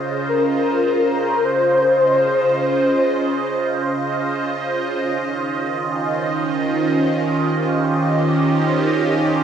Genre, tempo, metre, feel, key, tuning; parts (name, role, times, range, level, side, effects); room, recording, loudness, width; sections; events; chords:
ambient; free time; Db lydian; A4 = 442 Hz
evolving wavetable pad; sustained chords; 0.0-9.4 s; Db3 to Eb5; -18 LUFS; right 2 dB; phaser, built-in reverb, cassette tape
breathy flute-like synth lead; melody; 0.3-3.2 s; Bb4 to C5; -18 LUFS; left 3 dB; ensemble chorus, analog delay
wet studio ambience, RT60 0.5 s; home recording on cassette; -16 LUFS; side -8 dB against mid
0.0-9.4 A section
0.0 Dbmaj7; 4.9 Eb7